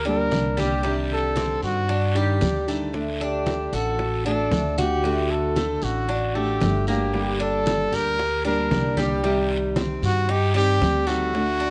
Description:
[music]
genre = latin, Cuban son and guajira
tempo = 114 BPM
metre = 4/4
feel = straight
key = unclear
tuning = A4 = 440 Hz
[part]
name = breathy trumpet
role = melody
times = 0.0-11.7 s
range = F#4 to Bb4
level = -28 LUFS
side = equal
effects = none
[part]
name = Cuban tres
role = arpeggios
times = 0.0-11.7 s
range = G3 to G4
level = -31 LUFS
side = equal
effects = none
[part]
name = upright bass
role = bass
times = 0.0-11.7 s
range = G1 to G2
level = -29 LUFS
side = equal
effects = none
[part]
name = nylon-string guitar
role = accompaniment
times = 0.1-11.7 s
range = C3 to G4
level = -30 LUFS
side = equal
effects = none
[part]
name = bongos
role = percussion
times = 0.1-11.7 s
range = none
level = -34 LUFS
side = equal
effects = none
[part]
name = congas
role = percussion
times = 0.1-11.7 s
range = none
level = -33 LUFS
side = equal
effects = none
[part]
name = guiro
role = percussion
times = 0.3-11.7 s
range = none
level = -41 LUFS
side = equal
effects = none
[sound]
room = moderate studio reverb, RT60 0.9 s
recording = worn, warbling old tape, cassette tape, warbly pitch drift, nothing above 10.6 kHz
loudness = -23 LUFS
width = mono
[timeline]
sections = 0.0-11.7 A section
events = none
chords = 0.0 Gm; 0.8 Cmadd9; 2.9 D; 7.1 Gm; 9.2 Cm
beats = 0.33 | 0.85 1.37 1.90 2.42 | 2.95 3.47 4.00 4.52 | 5.04 5.57 6.09 6.62 | 7.14 7.67 8.19 8.72 | 9.24 9.77 10.29 10.82 | 11.34

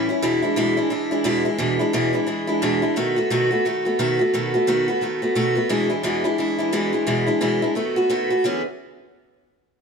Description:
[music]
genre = rock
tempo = 175 BPM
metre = 4/4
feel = swing 59% on 8ths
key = E mixolydian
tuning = A4 = 440 Hz
[part]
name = picked steel-string acoustic guitar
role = solo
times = 0.0-8.6 s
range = E2 to G#4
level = -19 LUFS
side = equal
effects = none
[sound]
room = moderate echo chamber reverb, RT60 1.6 s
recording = none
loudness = -19 LUFS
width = side -5 dB against mid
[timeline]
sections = 0.0-8.4 A section; 8.4-9.8 B section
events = none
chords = 0.2 E7; 3.0 B7; 5.7 E7; 7.8 B7; 8.4 E6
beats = | 0.23 0.57 0.91 1.26 | 1.60 1.94 2.28 2.63 | 2.97 3.31 3.65 4.00 | 4.34 4.68 5.02 5.37 | 5.71 6.05 6.39 6.74 | 7.08 7.42 7.76 8.11 | 8.45

